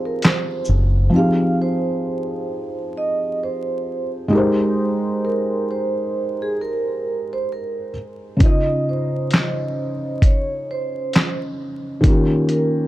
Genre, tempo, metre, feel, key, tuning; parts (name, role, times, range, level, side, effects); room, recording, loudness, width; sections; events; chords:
lo-fi hip hop; 66 BPM; 4/4; swing 57% on 16ths; F minor; A4 = 439 Hz
felt-muted upright piano; accompaniment; 0.0-12.9 s; Db3 to Eb5; -21 LUFS; equal; cassette tape
vibraphone with soft mallets; melody; 0.1-12.9 s; Ab4 to F5; -25 LUFS; right 3 dB; analog delay
dusty soul sampler-style drum kit; drums; 0.2-0.9, 8.4-12.7 s; handclaps, hi-hat, kick drum, shaker, snare drum; -16 LUFS; equal
deep dub fingered electric bass; bass; 0.7-1.1 s; Gb1; -15 LUFS; equal
light reverb; dark, warm production, vinyl crackle; -18 LUFS; side -15 dB against mid
0.0-1.1 A section; 1.1-12.9 B section
break 0.0-1.1
0.0 Fm7; 4.3 Abmaj9; 8.4 Dbmaj9; 12.0 Eb7